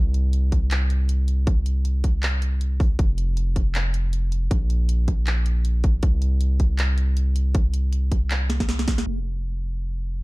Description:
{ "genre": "future bass", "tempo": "158 BPM", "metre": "4/4", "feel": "swing 55% on 16ths, half-time", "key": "unclear", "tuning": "A4 = 441 Hz", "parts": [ { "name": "long sustained 808-style bass", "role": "bass", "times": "0.0-10.2 s", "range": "F1 to C2", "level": "-21 LUFS", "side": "equal", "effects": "tube saturation, sidechain pumping" }, { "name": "trap drum kit", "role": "drums", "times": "0.1-9.2 s", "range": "crash cymbal, handclaps, hi-hat, snare drum", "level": "-29 LUFS", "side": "right 1 dB", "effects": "none" }, { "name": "electronic kick drum", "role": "drums", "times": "0.5-9.0 s", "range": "none", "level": "-20 LUFS", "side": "equal", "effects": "none" } ], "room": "little or no reverb", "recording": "dark, warm production, low-pass filter", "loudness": "-20 LUFS", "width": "side -22 dB against mid", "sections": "0.0-9.1 A section; 9.1-10.2 B section", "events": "drop 0.0-9.1; drum fill 8.5-9.1; filter sweep 9.1-10.2", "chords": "none" }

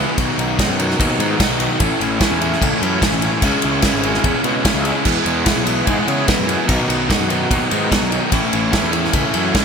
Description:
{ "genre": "indie rock", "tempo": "147 BPM", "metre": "4/4", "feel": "straight", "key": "unclear", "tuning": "A4 = 442 Hz", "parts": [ { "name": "fuzz guitar", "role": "riff", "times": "0.0-9.6 s", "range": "A2 to E4", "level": "-17 LUFS", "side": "equal", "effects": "distortion" }, { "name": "fuzz picked electric bass", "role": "bass", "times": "0.0-9.5 s", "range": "G#1 to C#3", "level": "-23 LUFS", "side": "equal", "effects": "overdrive" }, { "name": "unplugged drum kit", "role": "drums", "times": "0.2-9.6 s", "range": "crash cymbal, kick drum, ride cymbal, snare drum", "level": "-19 LUFS", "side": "equal", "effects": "gated reverb" } ], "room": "light reverb, studio reverb", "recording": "bright 1980s-style digital production", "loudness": "-14 LUFS", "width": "side -6 dB against mid", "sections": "0.0-9.6 A section", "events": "none", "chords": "0.2 B; 1.8 A; 3.4 C#m; 5.1 E; 6.7 B; 8.3 A" }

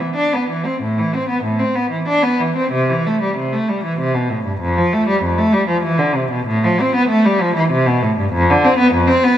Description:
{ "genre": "classical, baroque-style suite movement for unaccompanied cello", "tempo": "96 BPM", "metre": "3/4", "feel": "rubato", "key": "A minor", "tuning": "A4 = 440 Hz", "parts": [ { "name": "rich cello", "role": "solo", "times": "0.0-9.4 s", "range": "F2 to D4", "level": "-14 LUFS", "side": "equal", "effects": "none" } ], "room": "moderate scoring stage reverb, RT60 1.8 s", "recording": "none", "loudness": "-14 LUFS", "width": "side -11 dB against mid", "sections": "0.8-9.4 A section", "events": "none", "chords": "none" }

